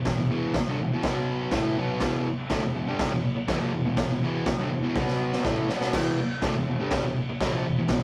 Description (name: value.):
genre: garage rock duo or trio.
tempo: 123 BPM.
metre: 4/4.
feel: straight.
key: E minor.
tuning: A4 = 440 Hz.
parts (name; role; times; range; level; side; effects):
fuzz guitar; riff; 0.0-8.0 s; E2 to B3; -29 LUFS; equal; distortion.
raw garage drum kit; drums; 0.1-8.0 s; crash cymbal, kick drum, snare drum; -30 LUFS; equal; none.
room: moderate stone room reverb, RT60 1.2 s.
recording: rough rehearsal-room recording, tube saturation.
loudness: -27 LUFS.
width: mono.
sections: 0.0-5.9 A section; 5.9-8.0 B section.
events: drum fill 5.0-5.9.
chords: 0.0 E5; 1.0 B5; 1.5 Em; 5.0 B5; 5.4 E5; 5.9 Em.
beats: | 0.06 0.55 1.04 1.53 | 2.02 2.51 3.00 3.49 | 3.98 4.47 4.96 5.45 | 5.94 6.42 6.91 7.40 | 7.89.